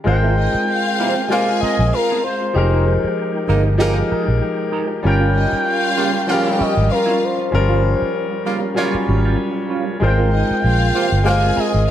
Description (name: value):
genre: soul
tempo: 96 BPM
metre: 4/4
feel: swing 54% on 16ths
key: Ab major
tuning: A4 = 442 Hz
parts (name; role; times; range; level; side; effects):
- clear concert grand piano; accompaniment; 0.0-11.9 s; F3 to Db5; -21 LUFS; left 2 dB; none
- expressive synth lead; melody; 0.1-11.9 s; Bb4 to G5; -21 LUFS; equal; chorus
- percussive tonewheel organ; sustained chords; 0.1-11.9 s; F3 to G5; -28 LUFS; right 2 dB; slow rotary speaker, chorus vibrato
- mellow electric guitar; riff; 0.1-11.9 s; G3 to C5; -27 LUFS; right 7 dB; wah
- vintage muted fingered electric bass; bass; 0.1-11.9 s; F1 to Bb1; -17 LUFS; equal; none
- warm symphonic string section; second line; 0.4-11.9 s; Eb4 to Ab5; -24 LUFS; left 2 dB; slapback echo
- clear horn section; stabs; 1.0-11.5 s; C3 to F4; -26 LUFS; right 3 dB; slapback echo
room: light reverb, small room ambience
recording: dark, warm production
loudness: -15 LUFS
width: side -11 dB against mid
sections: 0.1-11.9 A section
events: none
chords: 0.1 Ab69; 2.5 Fm11; 5.0 Eb9/G (rootless); 10.0 Ab69